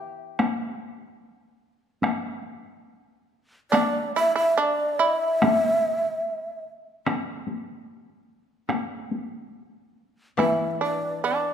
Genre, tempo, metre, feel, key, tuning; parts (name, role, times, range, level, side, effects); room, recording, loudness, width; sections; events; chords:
japanese traditional, Japanese chamber music; 72 BPM; 2/4; rubato; A4 = 440 Hz
koto; accompaniment; 0.0-1.2, 10.4-11.5 s; E3 to G4; -30 LUFS; left 4 dB
taiko ensemble; percussion; 0.4-10.6 s; -26 LUFS; left 1 dB
breathy mellow long shakuhachi; melody; 3.7-6.7, 10.4-11.5 s; D5 to E5; -24 LUFS; equal
shamisen; second line; 3.7-6.6, 10.4-11.5 s; D4 to E4; -25 LUFS; right 4 dB
moderate scoring stage reverb, RT60 1.8 s; minimal, uncompressed stereo recording; -22 LUFS; side -8 dB against mid
0.0-10.4 A section; 10.4-11.5 B section